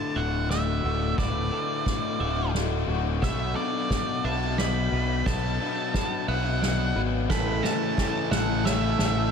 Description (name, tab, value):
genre	post-rock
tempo	59 BPM (dotted quarters)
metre	6/8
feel	straight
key	D major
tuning	A4 = 442 Hz
part	octave-fuzz lead guitar	melody	0.0-9.3 s	D5 to B5	-31 LUFS	right 4 dB	distortion, tape echo
part	pedal steel guitar	sustained chords	0.0-9.3 s	C#3 to B4	-40 LUFS	right 1 dB	none
part	electric guitar through a small old amp	arpeggios	0.0-9.3 s	D2 to B4	-36 LUFS	left 3 dB	analog chorus, tape echo
part	twelve-string electric guitar	arpeggios	0.0-9.3 s	A4 to E5	-40 LUFS	right 6 dB	wide subtle chorus, tape echo
part	distorted electric guitar	riff	0.0-9.3 s	D2 to B3	-31 LUFS	left 14 dB	distortion
part	growling fingered electric bass	bass	0.2-9.3 s	D1 to B1	-28 LUFS	right 1 dB	overdrive
part	soft-mallet drum kit	drums	0.2-9.2 s	crash cymbal, kick drum, ride cymbal, snare drum	-30 LUFS	equal	none
part	distorted electric guitar	riff	7.3-9.3 s	A2 to A3	-31 LUFS	right 13 dB	overdrive
room	light reverb, studio ambience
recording	none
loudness	-24 LUFS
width	side -6 dB against mid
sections	0.0-9.3 A section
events	build-up 0.0-9.3; drum fill 0.0-9.3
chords	0.0 D; 3.2 Bm7; 7.3 Aadd9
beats	0.16 | 1.18 2.20 | 3.22 4.24 | 5.26 6.28 | 7.30 8.32